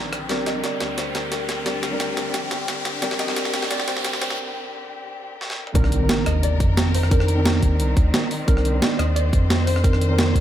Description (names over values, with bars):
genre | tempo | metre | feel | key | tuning
liquid drum and bass | 176 BPM | 4/4 | straight | C minor | A4 = 436 Hz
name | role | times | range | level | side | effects
soft round pluck | melody | 0.0-10.4 s | Bb4 to Eb5 | -31 LUFS | right 1 dB | wide subtle chorus, dub echo
dark concert grand piano | accompaniment | 0.0-10.4 s | Eb3 to Bb4 | -28 LUFS | left 1 dB | dub echo
rich studio string section | sustained chords | 0.0-10.4 s | D3 to C5 | -31 LUFS | left 2 dB | sidechain pumping
saturated sub bass | bass | 0.0-10.4 s | Bb1 to F2 | -22 LUFS | equal | none
riser and impact | sound effects | 0.0-7.1 s | none | -30 LUFS | equal | none
breakbeat sampler-style drum kit | drums | 0.1-10.4 s | hi-hat, rim click, snare drum, toms | -25 LUFS | right 2 dB | high-pass filter on snare, high-pass filter on hats, high-pass filter on toms, high-pass filter on room
electronic kick drum | drums | 5.8-10.4 s | none | -19 LUFS | equal | none
room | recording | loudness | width
light reverb, digital ambience | high-pass filter | -19 LUFS | side -11 dB against mid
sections
0.0-5.8 A section; 5.8-10.4 B section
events
build-up 0.0-5.8; drum fill 0.0-4.4, 5.4-5.8; riser 0.0-4.4; break 4.4-5.8; drop 5.8-10.4; impact 5.8-7.1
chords
0.1 Bb69; 5.8 Cm9